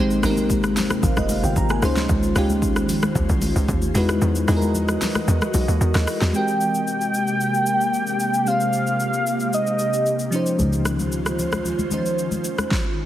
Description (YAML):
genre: amapiano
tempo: 113 BPM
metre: 4/4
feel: straight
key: Ab major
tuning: A4 = 440 Hz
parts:
  - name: bell-like FM electric piano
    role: accompaniment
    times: 0.0-12.5 s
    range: Eb3 to Bb5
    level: -24 LUFS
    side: equal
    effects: chorus, phaser
  - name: ethereal airy pad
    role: sustained chords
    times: 0.1-12.7 s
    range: C3 to D#5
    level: -26 LUFS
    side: equal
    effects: ensemble chorus, built-in reverb
  - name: tight log drum bass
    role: bass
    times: 0.0-6.3 s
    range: F1 to E2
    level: -22 LUFS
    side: equal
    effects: none
  - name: deep house drum kit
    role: drums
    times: 0.1-12.8 s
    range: hi-hat, kick drum, rim click, shaker, snare drum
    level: -25 LUFS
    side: equal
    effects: none
  - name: congas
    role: percussion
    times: 0.4-6.3, 10.6-12.7 s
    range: none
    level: -30 LUFS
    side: left 2 dB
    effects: none
  - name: warm velvety synth lead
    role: melody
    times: 6.4-10.3 s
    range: Eb5 to G5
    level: -22 LUFS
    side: equal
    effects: chorus, digital delay
  - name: dark double bass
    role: bass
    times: 10.6-12.4 s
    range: Db2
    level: -25 LUFS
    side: equal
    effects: none
room: light reverb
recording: heavily compressed radio sound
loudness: -18 LUFS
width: side -12 dB against mid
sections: 0.0-6.3 A section; 6.3-13.1 B section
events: drop 0.0-6.3; kick muted 4.2-6.3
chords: 0.0 Abmaj9; 1.8 Dbmaj9; 4.0 Emaj9; 6.3 Abmaj9; 10.3 Dbmaj9; 12.4 Emaj9